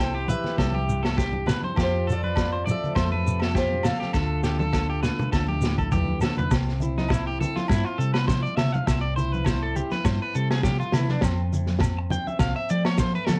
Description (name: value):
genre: highlife guitar band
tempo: 102 BPM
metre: 4/4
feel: swing 54% on 16ths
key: C major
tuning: A4 = 444 Hz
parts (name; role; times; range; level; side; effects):
- fingerpicked steel-string acoustic guitar; melody; 0.0-5.9 s; C5 to G5; -33 LUFS; equal; cassette tape
- warm trumpet; second line; 0.0-5.9 s; F4 to C5; -40 LUFS; equal; none
- fingerpicked steel-string acoustic guitar; accompaniment; 0.0-13.4 s; F2 to F4; -36 LUFS; equal; none
- electric guitar at the edge of break-up; arpeggios; 0.0-13.4 s; C4 to G5; -33 LUFS; equal; none
- hollow-body short-scale fingered electric bass; bass; 0.0-13.4 s; C2 to F3; -29 LUFS; equal; none
- shekere; percussion; 0.0-13.4 s; none; -32 LUFS; equal; none
- congas; percussion; 0.3-13.4 s; none; -34 LUFS; equal; none
- crunchy breakbeat drum kit; drums; 0.5-13.4 s; kick drum, snare drum, toms; -29 LUFS; equal; cassette tape
- agogo bells; percussion; 0.6-13.4 s; none; -40 LUFS; equal; none
room: light reverb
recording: home recording on cassette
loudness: -24 LUFS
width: mono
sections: 0.0-6.5 A section; 6.5-13.4 B section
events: drum fill 4.1-6.5; clean electric guitar solo 6.5-13.4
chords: 0.0 C; 1.8 F; 4.1 Dm; 6.5 C; 11.2 F